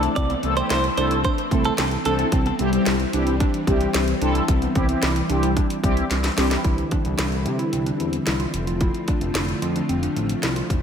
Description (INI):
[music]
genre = synth-pop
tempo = 111 BPM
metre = 4/4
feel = straight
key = A minor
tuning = A4 = 441 Hz
[part]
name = mellow synth brass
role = accompaniment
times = 0.0-6.6 s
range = G3 to A4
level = -24 LUFS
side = left 1 dB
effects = chorus, phaser, slapback echo
[part]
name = string machine, violas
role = sustained chords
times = 0.0-10.8 s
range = D3 to F4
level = -27 LUFS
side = left 1 dB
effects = ensemble chorus
[part]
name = warbly dusty pluck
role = arpeggios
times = 0.0-10.8 s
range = B3 to G4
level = -29 LUFS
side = right 3 dB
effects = chorus, ping-pong delay
[part]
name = smooth synth bass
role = bass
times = 0.0-10.8 s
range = F1 to C3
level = -26 LUFS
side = equal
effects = none
[part]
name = house drum kit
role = drums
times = 0.0-10.8 s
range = hi-hat, kick drum, snare drum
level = -24 LUFS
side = equal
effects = none
[part]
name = direct-recorded clean electric guitar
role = second line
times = 0.2-2.1 s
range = A4 to D5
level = -26 LUFS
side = right 2 dB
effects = tremolo, ping-pong delay, slapback echo
[sound]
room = moderate lush hall reverb, RT60 1.9 s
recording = big arena sound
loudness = -19 LUFS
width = side -7 dB against mid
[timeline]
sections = 0.0-6.6 A section; 6.6-10.8 B section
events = drum fill 6.1-6.6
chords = 0.0 Am/C; 6.6 Cadd9; 8.5 F6